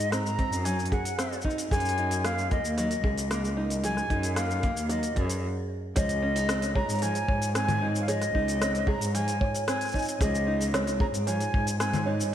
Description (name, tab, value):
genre	folktronica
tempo	113 BPM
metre	4/4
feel	straight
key	Db major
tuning	A4 = 440 Hz
part	mellow jazz flute	melody	0.0-12.3 s	Eb5 to Bb5	-31 LUFS	left 1 dB	analog delay
part	open-back banjo	arpeggios	0.0-12.3 s	F3 to Ab4	-34 LUFS	right 1 dB	analog delay
part	dark cello	bass	0.0-12.3 s	Db2 to Ab2	-30 LUFS	equal	none
part	organic electronic drum kit	drums	0.0-12.3 s	congas, hi-hat, rim click, shaker	-34 LUFS	left 2 dB	small room ambience
part	kick drum	drums	0.4-11.6 s	none	-28 LUFS	equal	small room ambience
part	small celesta	second line	6.0-12.3 s	Db5	-35 LUFS	right 3 dB	ping-pong delay
room	moderate lush hall reverb, RT60 1.8 s, studio ambience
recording	dreamy mix soaked in reverb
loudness	-25 LUFS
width	side -10 dB against mid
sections	0.0-6.0 A section; 6.0-12.3 B section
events	stop 5.4-6.0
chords	0.0 Ab7; 1.7 Gb69; 6.0 Dbmaj9